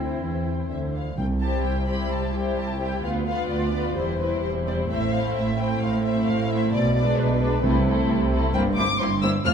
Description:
quick classical-period movement for symphony orchestra; 130 BPM; 4/4; rubato; C major; A4 = 444 Hz
muted studio violin section; melody; 0.0-9.5 s; B4 to F6; -30 LUFS; left 3 dB
muted studio violin section; second line; 0.0-9.5 s; D4 to C5; -29 LUFS; left 4 dB
warm clarinet; second line; 0.0-0.9 s; C4; -34 LUFS; left 7 dB
muted symphonic viola section; accompaniment; 0.0-9.5 s; G3 to F4; -28 LUFS; right 1 dB
muted studio cello section; bass; 0.0-9.5 s; C2 to E3; -27 LUFS; right 1 dB
muted studio double bass section; bass; 0.0-9.5 s; E1 to E2; -28 LUFS; right 2 dB
timpani; percussion; 1.2-1.8, 7.6-9.5 s; F2 to C3; -31 LUFS; right 2 dB
wet scoring stage reverb, RT60 1.7 s; minimal, uncompressed stereo recording; -21 LUFS; side -7 dB against mid
0.0-1.2 A section; 1.2-9.5 A section
0.0 C; 3.0 Bdim/D; 4.0 C/E; 4.9 Am; 6.7 G#dim/B; 7.6 Am/C; 8.5 C7/G

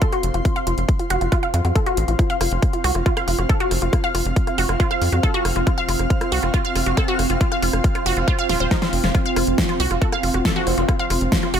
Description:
psychedelic trance; 138 BPM; 4/4; straight; A4 = 439 Hz
wide unison pluck; riff; 0.0-11.6 s; Eb4 to F5; -24 LUFS; moving between left 4 dB and right 5 dB; auto-pan, sidechain pumping, tape echo
big-room dance drum kit; drums; 0.0-11.6 s; hi-hat, rim click, snare drum; -26 LUFS; left 1 dB
electronic kick drum; drums; 0.0-11.4 s; -20 LUFS; equal
granular cloud pad; texture; 0.0-11.6 s; C4 to F6; -25 LUFS; right 1 dB; built-in reverb, sidechain pumping
tight sequencer bass; bass; 0.2-11.6 s; Eb1 to F2; -22 LUFS; equal
formant-sweep wobble bass; second line; 10.7-10.8 s; C4; -33 LUFS; right 2 dB; lush chorus, sidechain pumping, high-pass filter, dub echo
light reverb; -17 LUFS; side -8 dB against mid
0.0-11.6 A section
filter sweep on synth arpeggio sound 0.0-11.6; drum fill 8.5-9.1
0.0 F5

